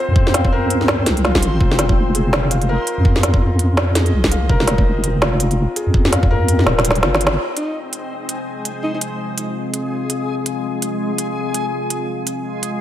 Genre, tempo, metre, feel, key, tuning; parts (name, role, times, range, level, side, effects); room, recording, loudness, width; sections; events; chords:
half-time drum and bass; 166 BPM; 4/4; swing 59% on 16ths, half-time; F minor; A4 = 443 Hz
felt-muted upright piano; arpeggios; 0.0-7.4 s; F4 to F5; -23 LUFS; left 2 dB; tape echo
backwards swelling texture; texture; 0.0-12.8 s; Ab3 to Eb5; -26 LUFS; left 2 dB; built-in reverb
deep soft wobble bass; bass; 0.1-7.4 s; Eb1 to F2; -17 LUFS; equal; chorus
electronic kick drum; drums; 0.2-6.3 s; -16 LUFS; equal
organic electronic drum kit; drums; 0.3-12.7 s; hi-hat, snare drum; -19 LUFS; equal; overdrive
deep dark ambient pad; sustained chords; 8.4-12.8 s; C4 to F5; -25 LUFS; left 2 dB; chorus, built-in reverb, vintage 12-bit sampler grit, sidechain pumping
breathy alto saxophone; melody; 7.6-9.0 s; Eb4; -27 LUFS; equal; tape echo
light reverb, digital ambience; -15 LUFS; side -12 dB against mid
0.0-7.4 A section; 7.4-12.8 B section
kick drops out 6.7-7.4; drum fill 6.7-7.4; band accent 7.3
0.0 F5